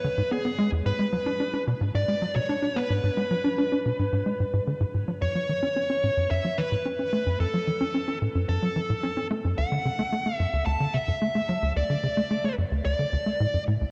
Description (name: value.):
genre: ambient, sequencer-driven space music.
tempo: 110 BPM.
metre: 4/4.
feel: straight.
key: F# minor.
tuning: A4 = 440 Hz.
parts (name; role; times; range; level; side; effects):
dark smooth lead guitar; melody; 0.0-13.6 s; G#4 to A5; -31 LUFS; equal; overdrive, tape echo.
tight sequencer bass; riff; 0.0-13.8 s; D2 to D4; -28 LUFS; equal; lush chorus, tape echo.
room: wet plate reverb, RT60 3.9 s.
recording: worn, warbling old tape, cassette tape, warbly pitch drift.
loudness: -26 LUFS.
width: mono.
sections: 0.0-13.9 A section.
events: none.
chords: 0.0 E; 0.9 G#dim; 5.2 F#m; 9.6 D.